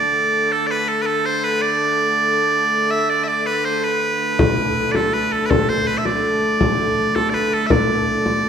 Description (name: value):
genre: medieval dance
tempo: 108 BPM (dotted quarters)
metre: 6/8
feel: straight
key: unclear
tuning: A4 = 438 Hz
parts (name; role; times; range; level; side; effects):
- loud bright bagpipes; melody; 0.0-8.5 s; A4 to E5; -18 LUFS; right 2 dB; none
- clear hurdy-gurdy; drone; 0.0-8.5 s; D3 to A3; -23 LUFS; equal; none
- frame drum; percussion; 4.4-8.5 s; none; -20 LUFS; left 2 dB; none
room: wet recital hall reverb, RT60 1.7 s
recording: recorded in a church or concert hall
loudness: -16 LUFS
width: side -7 dB against mid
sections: 0.0-8.5 A section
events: none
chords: none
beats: 0.51 | 1.07 1.62 | 2.18 2.73 | 3.29 3.84 | 4.39 4.95 | 5.50 6.05 | 6.61 7.16 | 7.71 8.27